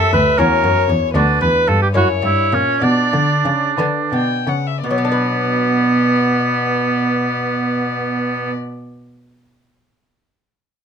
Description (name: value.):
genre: classical, baroque-style sonata movement with continuo.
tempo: 55-79 BPM (dotted quarters).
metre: 6/8.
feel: rubato.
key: B minor.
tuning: A4 = 440 Hz.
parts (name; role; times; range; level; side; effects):
dark violin; melody; 0.0-8.5 s; B4 to G5; -22 LUFS; left 7 dB; none.
warm oboe; second line; 0.0-8.5 s; B3 to B4; -18 LUFS; right 3 dB; none.
lute; accompaniment; 0.0-8.8 s; D2 to B4; -23 LUFS; left 3 dB; none.
warm cello; bass; 0.0-8.5 s; D2 to D3; -19 LUFS; right 1 dB; none.
room: light reverb.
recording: close, detailed microphones.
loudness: -14 LUFS.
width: side -7 dB against mid.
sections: 0.0-4.8 A section; 4.8-9.2 B section.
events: slowing down 0.4-4.8.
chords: 0.4 F#7/E; 1.1 Bm/D; 2.0 F#7; 2.8 Bm.